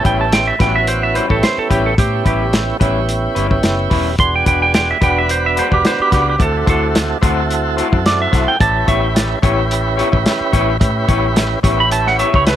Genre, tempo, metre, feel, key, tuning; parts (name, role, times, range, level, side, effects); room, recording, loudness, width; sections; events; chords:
straight-eighth soul blues; 109 BPM; 4/4; swing 54% on 16ths; A mixolydian; A4 = 440 Hz
clean lap steel guitar; second line; 0.0-12.6 s; G4 to C6; -17 LUFS; right 3 dB; tape echo
tonewheel organ; accompaniment; 0.0-12.6 s; B3 to B4; -19 LUFS; right 3 dB; slow rotary speaker
electric guitar through a small old amp; stabs; 0.0-12.4 s; G3 to C#5; -22 LUFS; left 6 dB
vintage muted fingered electric bass; bass; 0.1-12.6 s; E1 to A2; -20 LUFS; left 1 dB
warm soul drum kit; drums; 0.1-12.6 s; hi-hat, kick drum, snare drum; -16 LUFS; left 1 dB
studio ambience; -12 LUFS; side -11 dB against mid
0.0-12.6 A section
electric slide guitar solo 0.0-12.6
0.0 A9; 4.2 E9; 6.4 D9; 8.6 A9